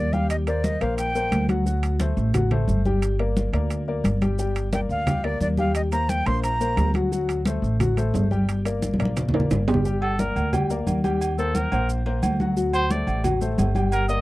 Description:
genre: latin, salsa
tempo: 176 BPM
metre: 4/4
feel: straight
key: G minor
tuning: A4 = 440 Hz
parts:
  - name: breathy bright jazz flute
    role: melody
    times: 0.0-1.5, 4.7-6.9 s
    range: D5 to C6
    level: -26 LUFS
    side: right 1 dB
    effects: none
  - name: clear upright piano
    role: accompaniment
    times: 0.0-14.2 s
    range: F#3 to G5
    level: -27 LUFS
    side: left 4 dB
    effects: none
  - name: upright bass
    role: bass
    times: 0.0-14.2 s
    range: G1 to Eb2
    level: -24 LUFS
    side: equal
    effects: none
  - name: congas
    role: percussion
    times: 0.1-14.2 s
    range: none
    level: -26 LUFS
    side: equal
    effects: none
  - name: maracas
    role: percussion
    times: 0.1-14.2 s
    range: none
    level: -42 LUFS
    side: right 6 dB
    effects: none
  - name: timbales and agogo bells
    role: percussion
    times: 0.3-14.1 s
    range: none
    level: -30 LUFS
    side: right 4 dB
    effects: none
  - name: clear trumpet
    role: melody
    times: 10.0-14.2 s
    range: A4 to Eb5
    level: -27 LUFS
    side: equal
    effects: none
room: little or no reverb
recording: dry, close 1970s-style studio recording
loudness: -20 LUFS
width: side -18 dB against mid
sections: 0.0-9.8 A section; 9.8-14.2 B section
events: drum fill 8.8-9.8; trumpet solo 9.8-14.2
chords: 0.3 Eb6; 1.7 D7; 3.0 Gm; 5.8 Eb6; 7.1 D7; 8.5 Gm; 11.2 Eb6; 12.6 D7

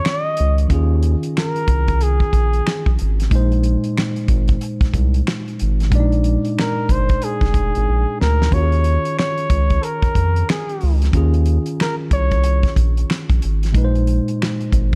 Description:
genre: R&B, neo-soul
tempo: 92 BPM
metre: 4/4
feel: swing 62% on 16ths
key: unclear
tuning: A4 = 440 Hz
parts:
  - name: warm flugelhorn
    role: melody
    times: 0.0-12.7 s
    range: Ab4 to Eb5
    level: -25 LUFS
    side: equal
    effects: none
  - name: tine electric piano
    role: accompaniment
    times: 0.0-15.0 s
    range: Bb2 to D5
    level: -26 LUFS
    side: equal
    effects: none
  - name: damped 70s drum kit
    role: drums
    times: 0.1-15.0 s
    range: finger snaps, hi-hat, kick drum, snare drum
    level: -22 LUFS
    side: equal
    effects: none
  - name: round analog bass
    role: bass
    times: 0.4-15.0 s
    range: F1 to F2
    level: -19 LUFS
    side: equal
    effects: none
room: small room ambience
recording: dark, warm production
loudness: -18 LUFS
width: mono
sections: 0.0-15.0 A section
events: drum fill 7.9-8.5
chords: 0.0 Eb9sus4; 3.3 Bb9sus4; 8.5 Eb9sus4; 13.7 Bb9sus4

